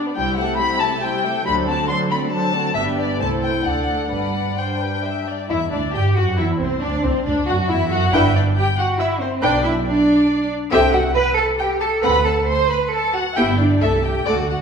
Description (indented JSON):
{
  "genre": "quick classical-period movement for string orchestra",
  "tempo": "137 BPM",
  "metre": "3/4",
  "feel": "rubato",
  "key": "G major",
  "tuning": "A4 = 440 Hz",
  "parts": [
    { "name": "muted chamber violin section", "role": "second line", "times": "0.0-14.6 s", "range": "B3 to C6", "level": "-25 LUFS", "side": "left 2 dB", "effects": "none" },
    { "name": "muted studio viola section", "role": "accompaniment", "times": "0.0-14.5 s", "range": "F#3 to B4", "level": "-24 LUFS", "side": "equal", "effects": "none" },
    { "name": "muted chamber violin section", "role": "melody", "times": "0.2-14.5 s", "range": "C4 to C6", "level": "-23 LUFS", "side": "left 3 dB", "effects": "none" },
    { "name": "muted chamber cello section", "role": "bass", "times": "0.2-14.6 s", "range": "G2 to C5", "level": "-22 LUFS", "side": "right 2 dB", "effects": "none" },
    { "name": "muted studio double bass section", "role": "bass", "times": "0.2-14.6 s", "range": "G1 to G2", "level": "-23 LUFS", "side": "right 2 dB", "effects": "none" }
  ],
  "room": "wet recital hall reverb, RT60 1.4 s",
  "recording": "recorded in a church or concert hall",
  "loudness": "-16 LUFS",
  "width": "side -6 dB against mid",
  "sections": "0.0-5.5 A section; 5.5-14.6 B section",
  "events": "none",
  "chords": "0.2 Am7/C; 1.5 D7; 2.8 G; 3.2 Am/C; 3.6 D; 4.1 G; 5.5 G5; 6.8 D; 8.1 G; 9.4 G/B (rootless); 10.7 Am7/C; 12.0 D7; 13.4 G; 13.8 Am/C"
}